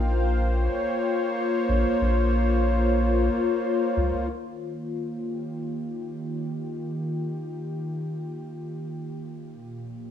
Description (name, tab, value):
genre	ambient dub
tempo	free time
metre	none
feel	none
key	unclear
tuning	A4 = 441 Hz
part	warm analog pad	sustained chords	0.0-10.1 s	Bb2 to G5	-26 LUFS	left 1 dB	chorus
part	round analog bass	bass	0.0-4.1 s	Bb1 to Db2	-23 LUFS	equal	none
room	moderate recital hall reverb, RT60 1.4 s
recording	small room ambience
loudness	-24 LUFS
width	side -9 dB against mid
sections	0.0-4.3 A section; 4.3-10.1 B section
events	none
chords	0.0 Eb9 (rootless); 4.3 Eb9; 9.5 Bb5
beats	free time